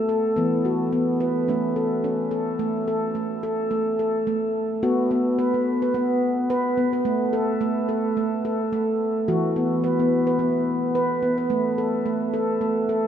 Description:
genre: world meditative, meditative tuned percussion.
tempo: 108 BPM.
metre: 4/4.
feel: swing 55% on 16ths.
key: unclear.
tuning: A4 = 442 Hz.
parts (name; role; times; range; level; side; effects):
handpan; solo; 0.0-13.1 s; E3 to B4; -21 LUFS; equal; none.
room: wet huge ambient reverb, RT60 8.5 s.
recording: in a vast, echoing space.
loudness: -21 LUFS.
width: side -9 dB against mid.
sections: 0.0-2.6 A section; 2.6-13.1 B section.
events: none.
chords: 0.4 E5; 1.5 A; 2.6 N.C.; 4.8 B5; 7.1 N.C.; 9.3 E5; 11.5 N.C..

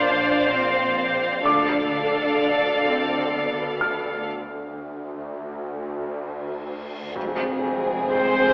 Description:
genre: cinematic.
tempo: 63 BPM.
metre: 3/4.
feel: straight.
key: unclear.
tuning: A4 = 441 Hz.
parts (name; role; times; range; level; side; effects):
rich symphonic violin section; melody; 0.0-8.5 s; C5 to F5; -29 LUFS; equal; none.
warm symphonic violin section; second line; 0.0-8.5 s; C4 to D5; -29 LUFS; equal; none.
rich symphonic viola section; accompaniment; 0.0-8.5 s; A4 to C5; -27 LUFS; equal; none.
concert harp; riff; 0.0-8.5 s; F2 to D3; -37 LUFS; equal; none.
rich symphonic cello section; bass; 0.0-8.5 s; F2 to D4; -30 LUFS; equal; none.
rich symphonic double bass section; bass; 0.0-8.5 s; F1 to D2; -39 LUFS; equal; none.
swarming drone; drone; 0.0-8.5 s; Bb1 to F2; -36 LUFS; equal; built-in reverb.
felt-muted upright piano; texture; 0.0-7.2 s; D6 to F6; -29 LUFS; equal; none.
reverse cymbal and impact; sound effects; 6.6-8.5 s; none; -39 LUFS; equal; none.
mellow French horn section; sustained chords; 7.2-8.5 s; Ab3 to C4; -30 LUFS; equal; none.
room: moderate scoring stage reverb, RT60 1.9 s.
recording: telephone sound.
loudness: -24 LUFS.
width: mono.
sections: 0.0-7.2 A section; 7.2-8.5 B section.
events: break 4.3-7.2; reverse cymbal 6.6-7.2; impact 7.2-8.5.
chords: 0.0 Bbadd9; 1.4 Dm; 7.2 Fm.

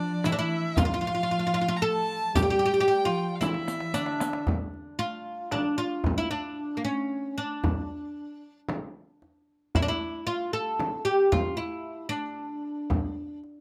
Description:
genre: Arabic maqam ensemble.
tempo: 114 BPM (eighths).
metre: 10/8.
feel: straight.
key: unclear.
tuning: A4 = 440 Hz.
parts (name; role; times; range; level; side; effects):
oud; melody; 0.0-13.4 s; Bb3 to A4; -30 LUFS; equal; none.
dark studio cello section; second line; 0.0-4.5 s; D3 to G3; -35 LUFS; equal; tape echo.
rich violin; second line; 0.0-4.5 s; D5 to Bb5; -35 LUFS; equal; none.
darbuka; percussion; 0.2-13.6 s; none; -33 LUFS; equal; none.
frame drum; percussion; 0.2-13.1 s; none; -34 LUFS; equal; none.
riq; percussion; 0.2-4.5 s; none; -38 LUFS; equal; none.
room: moderate studio ambience, RT60 0.5 s.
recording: close, detailed microphones.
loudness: -28 LUFS.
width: mono.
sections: 0.0-4.5 A section; 4.5-13.6 B section.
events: drum fill 3.4-4.5.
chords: none.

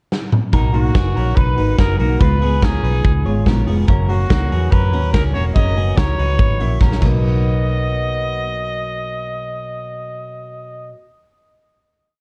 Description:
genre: jangly indie pop.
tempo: 143 BPM.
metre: 4/4.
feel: straight.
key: B major.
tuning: A4 = 441 Hz.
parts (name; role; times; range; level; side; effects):
big rock drum kit; drums; 0.1-7.1 s; crash cymbal, hi-hat, kick drum, snare drum, toms; -20 LUFS; equal; none.
fingerpicked steel-string acoustic guitar; accompaniment; 0.5-11.1 s; F#2 to F#4; -27 LUFS; equal; none.
twelve-string electric guitar; arpeggios; 0.5-8.4 s; A#3 to C#5; -30 LUFS; equal; spring reverb.
vintage muted fingered electric bass; bass; 0.5-10.9 s; E1 to F#2; -21 LUFS; equal; none.
bright trumpet; melody; 0.7-10.9 s; F#4 to D#5; -27 LUFS; equal; none.
room: studio ambience.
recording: cassette tape.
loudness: -17 LUFS.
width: mono.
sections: 0.0-0.5 pickup bar; 0.5-7.2 verse; 7.2-10.6 final hit.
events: drum fill 0.1-0.5, 6.8-7.2.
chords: 0.0 N.C.; 0.5 Bmaj7; 2.2 C#7; 3.9 F#; 7.0 Bmaj7.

